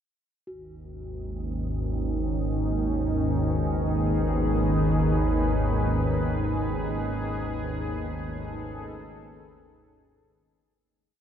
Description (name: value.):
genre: dark ambient drone.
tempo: free time.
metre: none.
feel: none.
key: G# phrygian.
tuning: A4 = 442 Hz.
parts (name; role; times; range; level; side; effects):
deep dark ambient pad; sustained chords; 1.5-10.9 s; C#4 to B4; -30 LUFS; right 1 dB; chorus, built-in reverb.
organ-like drone; drone; 1.0-11.0 s; G#1 to D#2; -26 LUFS; equal; ensemble chorus, built-in reverb.
quartz singing bowl; texture; 0.5-10.9 s; F#4; -46 LUFS; left 2 dB; none.
room: moderate huge ambient reverb, RT60 8.9 s.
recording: none.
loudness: -24 LUFS.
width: side -9 dB against mid.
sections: 0.5-10.9 A section.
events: fade-out 5.7-10.9.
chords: 0.5 G#m; 5.7 Aadd9/G#.